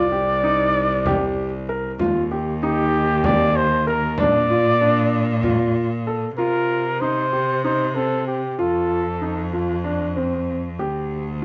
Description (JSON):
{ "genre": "contemporary instrumental, chamber music in an uneven meter", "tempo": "191 BPM (eighths)", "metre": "7/8", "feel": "straight", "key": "C dorian", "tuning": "A4 = 440 Hz", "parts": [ { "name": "warm flugelhorn", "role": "melody", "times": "0.0-9.8 s", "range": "G4 to D5", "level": "-24 LUFS", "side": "equal", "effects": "none" }, { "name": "clear cello", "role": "bass", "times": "0.0-11.4 s", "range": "C2 to C3", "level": "-26 LUFS", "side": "equal", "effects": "none" }, { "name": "warm grand piano", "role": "arpeggios", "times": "0.1-11.4 s", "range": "C4 to Bb4", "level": "-26 LUFS", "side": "equal", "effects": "none" }, { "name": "frame drum", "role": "percussion", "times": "1.1-5.7 s", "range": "none", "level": "-29 LUFS", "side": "equal", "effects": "none" } ], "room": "moderate studio reverb, RT60 0.6 s", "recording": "nothing above 7.9 kHz", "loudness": "-21 LUFS", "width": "mono", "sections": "0.0-6.4 A section; 6.4-11.4 B section", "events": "none", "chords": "0.0 Cm; 2.0 Eb; 4.2 Bb; 6.4 Cm; 8.6 F; 10.8 N.C." }